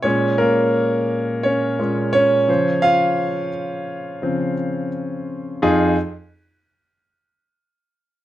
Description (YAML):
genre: pop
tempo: 86 BPM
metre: 4/4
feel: straight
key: F minor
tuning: A4 = 440 Hz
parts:
  - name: clear grand piano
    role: solo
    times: 0.0-5.9 s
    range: F2 to F5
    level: -17 LUFS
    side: equal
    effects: slapback echo
room: light reverb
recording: recorded outdoors, with no room sound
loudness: -17 LUFS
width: side -14 dB against mid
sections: 0.0-5.6 A section; 5.6-8.2 B section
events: grand piano solo 0.0-5.6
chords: 0.0 Bbm7; 2.5 Dbmaj7; 5.6 Fm7